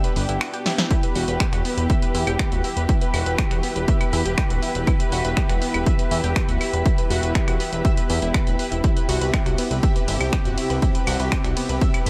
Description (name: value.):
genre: melodic techno.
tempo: 121 BPM.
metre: 4/4.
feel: straight.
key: unclear.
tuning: A4 = 439 Hz.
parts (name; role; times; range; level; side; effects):
warm studio string section; sustained chords; 0.0-12.1 s; C3 to B4; -31 LUFS; equal; sidechain pumping.
analog pluck; arpeggios; 0.0-12.1 s; B3 to E6; -32 LUFS; equal; chorus, sidechain pumping, tape echo.
punchy analog drum machine; drums; 0.0-12.1 s; claves, finger snaps, hi-hat, ride cymbal, snare drum; -30 LUFS; equal; none.
deep dark ambient pad; texture; 0.0-12.1 s; B3 to G5; -33 LUFS; equal; chorus, built-in reverb, sidechain pumping.
fat analog bass; bass; 0.2-12.1 s; D1 to E2; -27 LUFS; equal; sidechain pumping.
electronic kick drum; drums; 0.9-11.9 s; none; -23 LUFS; equal; overdrive.
room: digital ambience.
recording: none.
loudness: -21 LUFS.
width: mono.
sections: 0.0-12.1 A section.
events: drum fill 0.7.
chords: 0.0 G; 8.8 C.